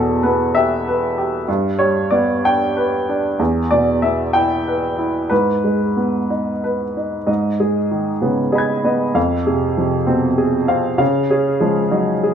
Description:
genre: neoclassical minimalist piano.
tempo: 64 BPM (dotted quarters).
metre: 6/8.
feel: rubato.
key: unclear.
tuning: A4 = 440 Hz.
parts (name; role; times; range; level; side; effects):
warm upright piano; solo; 0.0-12.3 s; E2 to G#6; -15 LUFS; equal; none.
room: moderate large studio reverb, RT60 0.9 s.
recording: band playing live in one room.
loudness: -15 LUFS.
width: side -8 dB against mid.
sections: 0.0-7.3 A section; 7.3-12.3 B section.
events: none.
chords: 0.0 Em; 1.5 G; 3.4 Em; 5.3 G#m; 9.2 Fm; 11.0 C#add9.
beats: 0.55 | 1.48 2.45 | 3.40 4.34 | 5.31 6.30 | 7.28 8.23 | 9.16 10.08 | 11.00 11.94.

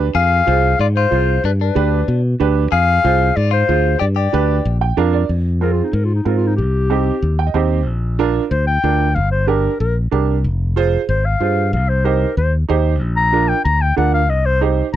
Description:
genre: latin.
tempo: 187 BPM.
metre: 4/4.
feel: straight.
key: unclear.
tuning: A4 = 440 Hz.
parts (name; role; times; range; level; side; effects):
warm upright piano; accompaniment; 0.0-14.8 s; C4 to G5; -19 LUFS; right 10 dB; none.
fingered electric bass; bass; 0.0-15.0 s; F1 to B2; -17 LUFS; left 1 dB; none.
clean electric guitar; second line; 0.1-4.8 s; D4 to Ab4; -24 LUFS; left 15 dB; none.
dark clarinet; melody; 0.2-15.0 s; Eb4 to Bb5; -18 LUFS; left 4 dB; none.
room: little or no reverb.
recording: dry, close 1970s-style studio recording.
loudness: -14 LUFS.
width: side -12 dB against mid.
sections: 0.0-5.3 A section; 5.3-15.0 B section.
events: upright piano fill 4.7-5.3, 7.2-7.9; clarinet solo 5.3-15.0.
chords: 0.2 Fm; 1.4 G; 2.7 Fm; 4.0 G; 4.7 Bb; 5.3 Fm; 6.6 Cm; 7.9 Bb; 9.2 Gm; 10.4 Fm; 11.7 Cm; 13.0 Bb; 14.3 Cm.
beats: | 0.15 0.47 0.80 1.12 | 1.44 1.76 2.08 2.40 | 2.72 3.05 3.37 3.69 | 4.01 4.33 4.65 4.97 | 5.30 5.62 5.94 6.26 | 6.58 6.91 7.23 7.55 | 7.87 8.19 8.51 8.84 | 9.16 9.48 9.80 10.12 | 10.44 10.77 11.09 11.41 | 11.73 12.05 12.37 12.69 | 13.01 13.33 13.65 13.98 | 14.30 14.62 14.94.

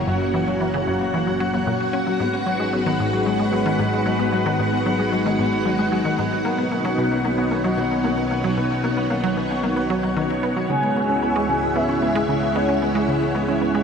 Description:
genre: ambient, sequencer-driven space music.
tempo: 113 BPM.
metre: 4/4.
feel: straight.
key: G# minor.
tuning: A4 = 445 Hz.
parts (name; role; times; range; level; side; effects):
string machine, full ensemble; sustained chords; 0.0-13.8 s; G#3 to F#5; -22 LUFS; equal; ensemble chorus.
Celtic harp; arpeggios; 0.0-13.8 s; F#3 to C#5; -28 LUFS; left 1 dB; auto-pan, ping-pong delay.
resonant blip pluck; riff; 0.0-13.8 s; F#2 to C#4; -24 LUFS; equal; chorus, ping-pong delay.
fat analog bass; bass; 0.0-13.8 s; F#1 to C#2; -33 LUFS; equal; none.
bubbling stepped-filter texture; texture; 0.0-13.8 s; F#5; -30 LUFS; left 1 dB; chorus, built-in reverb.
expressive portamento lead; melody; 10.7-13.1 s; C#5 to G#5; -24 LUFS; equal; analog chorus, ping-pong delay.
room: wet huge ambient reverb, RT60 8.9 s.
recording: dreamy mix soaked in reverb.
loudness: -19 LUFS.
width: side -6 dB against mid.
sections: 0.0-13.8 A section.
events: fade-in on analog synth bass 0.0-13.8.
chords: 0.0 F#; 2.2 G#m7; 6.4 Badd9; 10.7 C#m.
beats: | 0.08 0.61 1.14 1.67 | 2.20 2.73 3.26 3.79 | 4.33 4.86 5.39 5.92 | 6.45 6.98 7.51 8.04 | 8.57 9.10 9.63 10.17 | 10.70 11.23 11.76 12.29 | 12.82 13.35.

